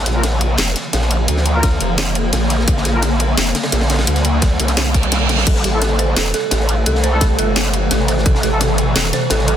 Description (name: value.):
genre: dark technical drum and bass.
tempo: 172 BPM.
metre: 4/4.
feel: straight.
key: unclear.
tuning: A4 = 436 Hz.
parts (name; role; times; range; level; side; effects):
swarming drone; sustained chords; 0.0-9.6 s; C3 to Bb3; -22 LUFS; equal; built-in reverb, sidechain pumping.
growl bass; bass; 0.0-9.6 s; E1 to D2; -17 LUFS; equal; chorus, overdrive.
mellow brass ensemble; stabs; 0.1-3.0, 5.7-8.6 s; A3 to Bb4; -26 LUFS; left 2 dB; ping-pong delay.
crunchy breakbeat drum kit; drums; 0.1-9.6 s; ride cymbal, snare drum; -25 LUFS; equal; high-pass filter on cymbals, small room ambience, high-pass filter on snare, high-pass filter on room.
drum and bass drum kit; drums; 0.1-9.6 s; crash cymbal, hi-hat, snare drum; -20 LUFS; left 1 dB; small room ambience.
electronic kick drum; drums; 1.6-8.3 s; none; -16 LUFS; equal; overdrive, small room ambience.
reverse cymbal; sound effects; 4.9-5.5 s; none; -22 LUFS; right 7 dB; none.
dark detuned synth bell; arpeggios; 5.5-9.6 s; A4 to C5; -22 LUFS; right 3 dB; chorus, sidechain pumping, ping-pong delay.
room: light reverb, small room ambience.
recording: dense, heavily limited modern master.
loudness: -14 LUFS.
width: side -10 dB against mid.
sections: 0.0-9.6 A section.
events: reverse cymbal 4.9-5.5.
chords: 0.0 Bb; 5.5 Am.